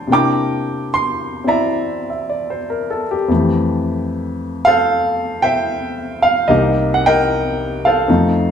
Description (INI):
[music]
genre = solo jazz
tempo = 75 BPM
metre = 4/4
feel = swing 68% on 8ths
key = unclear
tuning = A4 = 440 Hz
[part]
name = warm baby grand piano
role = solo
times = 0.0-8.5 s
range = C2 to D6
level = -15 LUFS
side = equal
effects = none
[sound]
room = wet stone room reverb, RT60 1.2 s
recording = band playing live in one room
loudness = -15 LUFS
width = side -8 dB against mid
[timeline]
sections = 0.0-8.5 A section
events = none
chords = 0.1 C9; 3.3 Fmaj9; 6.5 Cm7